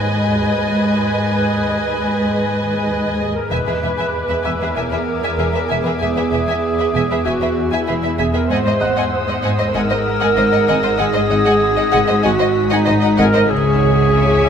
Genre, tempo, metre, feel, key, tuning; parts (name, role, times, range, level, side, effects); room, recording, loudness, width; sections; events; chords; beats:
cinematic, suspense film score; 96 BPM; 4/4; straight; A4 = 440 Hz
muted symphonic violin section; melody; 0.0-14.5 s; B4 to Ab5; -26 LUFS; left 3 dB
muted symphonic violin section; second line; 0.0-14.5 s; G#4 to Gb5; -23 LUFS; left 1 dB
muted studio viola section; accompaniment; 0.0-14.5 s; Eb4 to C5; -23 LUFS; right 1 dB
ethereal airy pad; sustained chords; 0.0-14.5 s; B3 to Gb5; -25 LUFS; right 1 dB; ensemble chorus, built-in reverb
muted studio cello section; bass; 0.0-14.5 s; E2 to Db3; -23 LUFS; right 2 dB
swarming drone; drone; 0.0-14.5 s; Ab1 to E2; -28 LUFS; equal; built-in reverb
felt-muted upright piano; texture; 0.0-13.5 s; Gb5 to Gb6; -33 LUFS; left 1 dB
marimba with medium mallets; riff; 0.1-14.5 s; E2 to Ab3; -24 LUFS; left 3 dB
mellow clarinet; second line; 3.2-14.5 s; Eb4 to C5; -20 LUFS; equal
muted studio double bass section; bass; 3.5-14.5 s; E1 to Db2; -25 LUFS; right 3 dB
muted studio violin section; texture; 3.5-14.5 s; G#5 to Bb6; -30 LUFS; left 2 dB
moderate scoring stage reverb, RT60 1.7 s; -14 LUFS; side -7 dB against mid
0.0-3.5 A section; 3.5-14.5 B section
0.0 Abm; 3.5 E; 8.5 Ab7; 13.5 Dbm
0.39 | 1.01 1.64 2.26 2.89 | 3.51 4.14 4.76 5.39 | 6.01 6.64 7.26 7.89 | 8.51 9.14 9.76 10.39 | 11.01 11.64 12.26 12.89 | 13.51 14.14